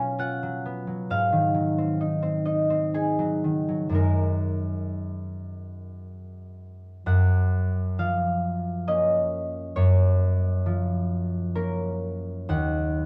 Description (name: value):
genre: classical, solo harp piece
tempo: 52-70 BPM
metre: 3/4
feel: rubato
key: F# major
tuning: A4 = 439 Hz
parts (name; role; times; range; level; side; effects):
- concert harp; solo; 0.0-13.1 s; D#2 to A#5; -26 LUFS; equal; none
room: light reverb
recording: dark, warm production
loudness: -25 LUFS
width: mono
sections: 0.0-7.1 A section; 7.1-13.1 B section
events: none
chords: 0.0 F#maj7/B; 1.1 G#9; 3.9 F#69; 7.1 F#maj7; 12.5 D#madd9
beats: 0.19 | 1.09 1.99 2.94 | 3.95 4.98 6.00 | 7.07 8.00 8.88 | 9.76 10.65 11.54 | 12.49